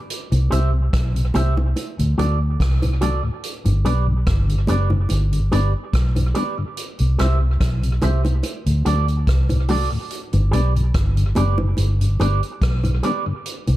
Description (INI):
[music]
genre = roots reggae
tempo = 72 BPM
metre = 4/4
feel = straight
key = G major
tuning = A4 = 440 Hz
[part]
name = vintage drum kit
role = drums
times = 0.1-13.8 s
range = hi-hat, kick drum, rim click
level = -25 LUFS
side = equal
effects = none
[part]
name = mellow tonewheel organ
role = accompaniment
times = 0.3-13.7 s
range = D2 to E4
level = -26 LUFS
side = left 3 dB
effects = chorus vibrato
[part]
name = vintage muted fingered electric bass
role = bass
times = 0.3-13.8 s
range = F#1 to D2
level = -18 LUFS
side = equal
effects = none
[part]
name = bongos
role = percussion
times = 0.3-13.8 s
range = none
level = -29 LUFS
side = right 2 dB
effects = none
[part]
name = electric guitar with an envelope filter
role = accompaniment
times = 0.5-13.3 s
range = F#4 to E5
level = -28 LUFS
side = right 4 dB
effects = tape echo
[sound]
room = small room ambience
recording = dark, warm production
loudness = -17 LUFS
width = side -16 dB against mid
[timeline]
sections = 0.0-13.8 A section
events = none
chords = 0.1 C; 1.8 D; 3.4 G; 6.8 C; 8.4 D; 10.1 G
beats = | 0.10 0.93 1.76 2.60 | 3.43 4.27 5.10 5.94 | 6.77 7.61 8.44 9.28 | 10.11 10.95 11.78 12.62 | 13.45